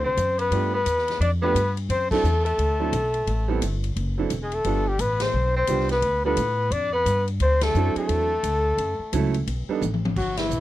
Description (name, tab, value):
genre	jazz, small-group swing and bop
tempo	174 BPM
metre	4/4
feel	swing 62% on 8ths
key	D mixolydian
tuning	A4 = 436 Hz
part	warm flugelhorn	melody	0.0-10.6 s	E4 to D5	-24 LUFS	left 2 dB	none
part	clear tenor saxophone	second line	0.0-10.6 s	E3 to D4	-32 LUFS	right 3 dB	none
part	bright upright piano	accompaniment	0.0-9.8 s	F#3 to A4	-27 LUFS	right 8 dB	none
part	upright bass	bass	0.0-10.6 s	E1 to A2	-25 LUFS	equal	none
part	swinging big-band drum kit	drums	0.2-10.6 s	crash cymbal, hi-hat, kick drum, ride cymbal, snare drum, toms	-34 LUFS	left 2 dB	none
room	light reverb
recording	none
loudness	-21 LUFS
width	side -14 dB against mid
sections	0.0-10.6 A section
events	band accent 2.1, 5.2, 7.6, 10.3; drum fill 9.8-10.2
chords	0.0 D9; 0.5 G9; 1.9 D9; 3.3 Am7; 4.0 D9; 4.6 G9; 7.4 D9; 8.8 F#m7; 9.5 B7alt